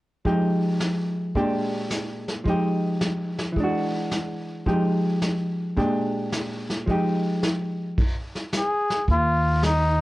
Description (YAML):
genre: jazz, small-group swing and bop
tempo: 109 BPM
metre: 4/4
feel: swing 68% on 8ths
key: unclear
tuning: A4 = 441 Hz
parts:
  - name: vintage hollow-body jazz guitar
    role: accompaniment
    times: 0.2-8.0 s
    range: Bb2 to G4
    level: -23 LUFS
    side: equal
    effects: none
  - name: vintage brush drum kit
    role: drums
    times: 0.2-10.0 s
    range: brushed snare drum, crash cymbal, hi-hat, kick drum, snare drum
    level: -28 LUFS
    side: equal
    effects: none
  - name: trumpet with cup mute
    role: melody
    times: 8.6-10.0 s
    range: Eb4 to Ab4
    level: -22 LUFS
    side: left 1 dB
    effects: none
  - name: upright bass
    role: bass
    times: 9.1-10.0 s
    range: Eb2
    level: -21 LUFS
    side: equal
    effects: transformer saturation
room: light reverb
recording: worn, warbling old tape, cassette tape, warbly pitch drift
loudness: -22 LUFS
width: side -18 dB against mid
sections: 0.2-9.1 A section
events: none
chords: 0.2 Fm9; 1.4 Bb6; 2.5 Fm9; 3.6 E9; 4.7 Fm9; 5.8 Bb6; 6.9 Fm9; 8.0 N.C.; 9.1 Ebsus2